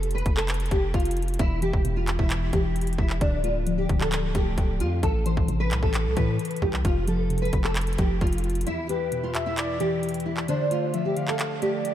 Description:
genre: hip hop, trap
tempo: 132 BPM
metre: 4/4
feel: half-time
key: E phrygian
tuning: A4 = 441 Hz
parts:
  - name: nylon-string guitar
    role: melody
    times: 0.0-11.9 s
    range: D4 to C5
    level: -29 LUFS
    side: equal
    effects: ensemble chorus, ping-pong delay
  - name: long sustained 808-style bass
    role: bass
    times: 0.0-8.6 s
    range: D1 to A2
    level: -27 LUFS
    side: equal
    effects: none
  - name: trap drum kit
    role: drums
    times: 0.0-11.9 s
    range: handclaps, hi-hat, kick drum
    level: -28 LUFS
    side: equal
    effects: none
  - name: muted felt-like synth keys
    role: accompaniment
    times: 1.4-11.9 s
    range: E2 to A3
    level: -30 LUFS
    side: left 2 dB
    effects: chorus
  - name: breathy flute-like synth lead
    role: second line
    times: 8.9-11.9 s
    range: B4 to F5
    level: -30 LUFS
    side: equal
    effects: chorus, phaser, ping-pong delay
room: light reverb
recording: none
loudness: -22 LUFS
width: side -11 dB against mid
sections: 0.0-11.9 A section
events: break 0.0-1.4, 8.7-11.9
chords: 0.0 N.C.; 1.4 Em; 3.2 Dm; 5.0 Amadd9; 6.8 F5; 8.7 Em; 10.5 Dm7

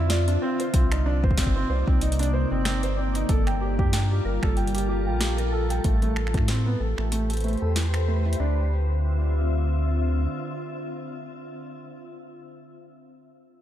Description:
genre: IDM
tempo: 94 BPM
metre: 4/4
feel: swing 56% on 16ths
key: D minor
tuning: A4 = 440 Hz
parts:
  - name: glassy FM pad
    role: sustained chords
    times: 0.0-11.7 s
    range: C3 to E5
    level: -30 LUFS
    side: left 2 dB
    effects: ensemble chorus, built-in reverb
  - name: felt-muted upright piano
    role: arpeggios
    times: 0.0-8.7 s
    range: E3 to G5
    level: -30 LUFS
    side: right 3 dB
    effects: low-pass filter, digital delay
  - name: warm sub bass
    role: bass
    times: 0.0-10.3 s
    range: G1 to A2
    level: -24 LUFS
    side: equal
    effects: none
  - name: booming analog drum machine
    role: drums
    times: 0.1-8.5 s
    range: finger snaps, hi-hat, snare drum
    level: -32 LUFS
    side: equal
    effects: none
  - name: electronic kick drum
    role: drums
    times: 0.7-6.5 s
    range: none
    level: -23 LUFS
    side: equal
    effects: none
room: light reverb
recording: dark, warm production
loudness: -22 LUFS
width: side -11 dB against mid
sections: 0.0-8.4 A section; 8.4-11.0 B section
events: filter sweep on felt piano 0.0-8.4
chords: 0.4 Cm9; 3.3 Gm9; 5.8 Am9; 8.4 Dm9

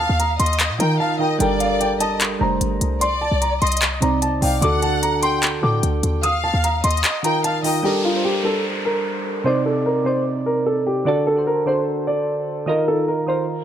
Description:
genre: hip hop, trap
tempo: 149 BPM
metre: 4/4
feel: half-time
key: G minor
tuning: A4 = 440 Hz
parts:
  - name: dark concert grand piano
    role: melody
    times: 0.0-13.4 s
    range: F4 to Eb6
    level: -22 LUFS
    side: equal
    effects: low-pass filter
  - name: rich studio violin section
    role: second line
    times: 0.0-7.8 s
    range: D5 to G5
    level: -25 LUFS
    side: left 1 dB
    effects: ping-pong delay
  - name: short 808-style bass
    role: bass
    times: 0.0-7.0 s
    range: F1 to Eb3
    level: -22 LUFS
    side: equal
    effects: none
  - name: trap drum kit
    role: drums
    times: 0.2-7.7 s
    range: handclaps, hi-hat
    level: -22 LUFS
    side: left 1 dB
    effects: none
  - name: soft electric-piano-like synth keys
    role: accompaniment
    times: 0.8-13.6 s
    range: C3 to D5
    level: -22 LUFS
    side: right 1 dB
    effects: chorus, low-pass filter
  - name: downlifter and reverse cymbal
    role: sound effects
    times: 7.8-11.1, 13.6 s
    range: none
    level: -29 LUFS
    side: equal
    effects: none
room: light reverb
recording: none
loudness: -17 LUFS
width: side -10 dB against mid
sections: 0.0-7.8 A section; 7.8-13.6 B section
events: drums muted 1.0-1.4; kick muted 7.0-7.8; reverse cymbal 13.6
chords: 0.0 Ebsus2; 1.4 Gmadd9; 3.0 Cmadd9; 4.6 D; 6.2 Ebsus2; 7.8 Gmadd9; 9.5 Cmadd9; 11.1 D; 12.7 Ebsus2

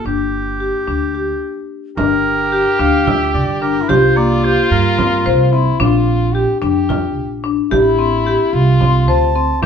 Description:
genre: contemporary instrumental, chamber music in an uneven meter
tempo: 220 BPM (eighths)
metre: 7/8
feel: straight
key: G dorian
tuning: A4 = 440 Hz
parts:
  - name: clear oboe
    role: melody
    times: 0.0-5.5, 9.1-9.7 s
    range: G4 to A5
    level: -20 LUFS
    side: right 3 dB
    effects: none
  - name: upright bass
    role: bass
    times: 0.0-9.7 s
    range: G1 to G2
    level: -18 LUFS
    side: right 3 dB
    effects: none
  - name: marimba with hard mallets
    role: arpeggios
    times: 0.1-9.7 s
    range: Bb3 to C5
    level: -17 LUFS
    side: left 5 dB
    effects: none
  - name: stopped French horn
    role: second line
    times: 2.0-9.7 s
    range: E4 to G4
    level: -20 LUFS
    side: left 1 dB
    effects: none
  - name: frame drum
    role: percussion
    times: 2.0-9.7 s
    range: none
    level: -22 LUFS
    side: right 6 dB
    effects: none
room: wet studio reverb, RT60 0.7 s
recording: heard from further back in the room, nothing above 10.3 kHz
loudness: -12 LUFS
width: side -7 dB against mid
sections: 0.0-2.0 A section; 2.0-9.7 B section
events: stop 1.4-2.0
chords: 0.0 G5; 2.0 Gm7; 3.9 C7sus4; 5.8 Bb6; 7.7 Fmaj9/A

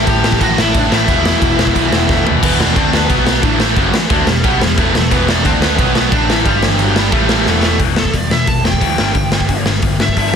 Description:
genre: punk rock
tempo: 178 BPM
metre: 4/4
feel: straight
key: E minor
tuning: A4 = 444 Hz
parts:
  - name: lead guitar through a small cranked amp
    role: melody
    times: 0.0-10.3 s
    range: E3 to A5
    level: -19 LUFS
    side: equal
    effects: overdrive
  - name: cranked stack guitar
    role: riff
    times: 0.0-10.4 s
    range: E2 to D4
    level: -19 LUFS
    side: left 14 dB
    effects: overdrive
  - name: distorted electric guitar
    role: riff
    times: 0.0-7.8 s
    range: E2 to D4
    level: -19 LUFS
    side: right 19 dB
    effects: overdrive
  - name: overdriven picked electric bass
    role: bass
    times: 0.0-10.4 s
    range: E1 to D2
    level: -19 LUFS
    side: equal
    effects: none
  - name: raw garage drum kit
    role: drums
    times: 0.1-10.4 s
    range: crash cymbal, hi-hat, kick drum, snare drum, toms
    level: -15 LUFS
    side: equal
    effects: none
room: little or no reverb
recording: dense, heavily limited modern master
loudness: -11 LUFS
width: side -7 dB against mid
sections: 0.0-2.4 A section; 2.4-7.8 B section; 7.8-10.4 C section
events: drum fill 2.1-2.4, 7.5-7.8; lead electric guitar solo 7.8-10.4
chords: 0.0 A5; 1.1 E5; 2.8 D5; 3.1 B5; 3.4 A5; 3.8 Em; 5.4 D5; 5.8 B5; 6.1 A5; 6.5 G5; 7.1 A5; 7.5 E5; 7.8 Em; 9.0 G5

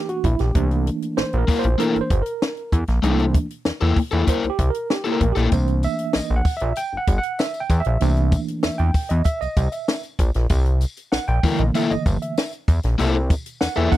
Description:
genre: funk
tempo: 96 BPM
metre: 4/4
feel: straight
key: C mixolydian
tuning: A4 = 440 Hz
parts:
  - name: tine electric piano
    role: stabs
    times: 0.0-14.0 s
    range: D3 to G5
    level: -24 LUFS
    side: right 4 dB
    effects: overdrive, fast stereo tremolo
  - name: compact cocktail drum kit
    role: drums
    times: 0.1-14.0 s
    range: hi-hat, kick drum, snare drum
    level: -21 LUFS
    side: equal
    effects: none
  - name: fat analog bass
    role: bass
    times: 0.2-13.9 s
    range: G1 to E2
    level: -20 LUFS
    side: equal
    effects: none
  - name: crunchy overdriven guitar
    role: accompaniment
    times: 1.5-5.5, 11.4-13.9 s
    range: Bb3 to Bb4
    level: -21 LUFS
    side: left 6 dB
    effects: none
  - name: tambourine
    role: percussion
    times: 5.5-14.0 s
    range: none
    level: -41 LUFS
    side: left 5 dB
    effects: none
room: little or no reverb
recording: dry, close 1970s-style studio recording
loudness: -18 LUFS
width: side -14 dB against mid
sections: 0.0-14.0 A section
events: tine electric piano solo 0.0-14.0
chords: 0.0 C13

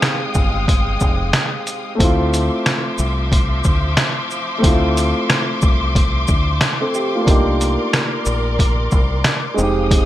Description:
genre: hip hop, boom-bap hip-hop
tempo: 91 BPM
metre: 4/4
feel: swing 60% on 16ths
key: unclear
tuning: A4 = 440 Hz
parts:
  - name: dark grand piano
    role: accompaniment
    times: 0.0-10.1 s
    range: Ab3 to A4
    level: -21 LUFS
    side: right 1 dB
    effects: high-pass filter, low-pass filter
  - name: clear studio string section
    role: sustained chords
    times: 0.0-10.1 s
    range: F3 to Eb6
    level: -23 LUFS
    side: left 2 dB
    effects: high-pass filter, low-pass filter
  - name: trip hop sampler-style drum kit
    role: drums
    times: 0.0-10.1 s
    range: hi-hat, kick drum, rim click, shaker, snare drum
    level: -17 LUFS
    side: equal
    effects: gated reverb
  - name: deep dub fingered electric bass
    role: bass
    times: 0.4-10.1 s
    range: F1 to D2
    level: -20 LUFS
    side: equal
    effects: none
room: light reverb, digital ambience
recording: bright 1980s-style digital production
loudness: -15 LUFS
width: side -13 dB against mid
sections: 0.0-10.1 A section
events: break 0.0-2.0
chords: 0.0 Fm9; 2.0 Dm9; 7.3 Cm9

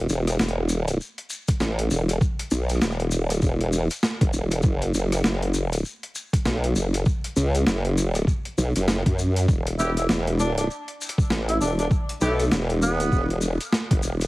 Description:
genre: glitch hop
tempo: 99 BPM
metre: 4/4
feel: swing 60% on 16ths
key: unclear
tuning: A4 = 438 Hz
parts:
  - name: formant-sweep wobble bass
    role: bass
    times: 0.0-14.3 s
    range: E1 to F#2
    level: -22 LUFS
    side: equal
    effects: chorus
  - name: shekere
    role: percussion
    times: 0.1-14.3 s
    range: none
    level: -34 LUFS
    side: left 3 dB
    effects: none
  - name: boom bap sampler-style drum kit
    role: drums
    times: 0.3-14.3 s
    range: hi-hat, rim click, snare drum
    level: -27 LUFS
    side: equal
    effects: overdrive
  - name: electronic kick drum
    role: drums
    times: 1.5-14.0 s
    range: none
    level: -22 LUFS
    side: equal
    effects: overdrive
  - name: warm tenor saxophone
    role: melody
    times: 9.8-13.3 s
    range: A3 to E4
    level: -28 LUFS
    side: equal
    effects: dub echo
  - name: clear horn section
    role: stabs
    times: 9.8-12.3 s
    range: B3 to G4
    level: -35 LUFS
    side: left 1 dB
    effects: sidechain pumping, dub echo
room: small room ambience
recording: heavily compressed radio sound, vinyl crackle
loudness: -21 LUFS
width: side -20 dB against mid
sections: 0.0-14.3 A section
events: none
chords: 0.0 N.C.; 4.6 F#5; 9.5 N.C.

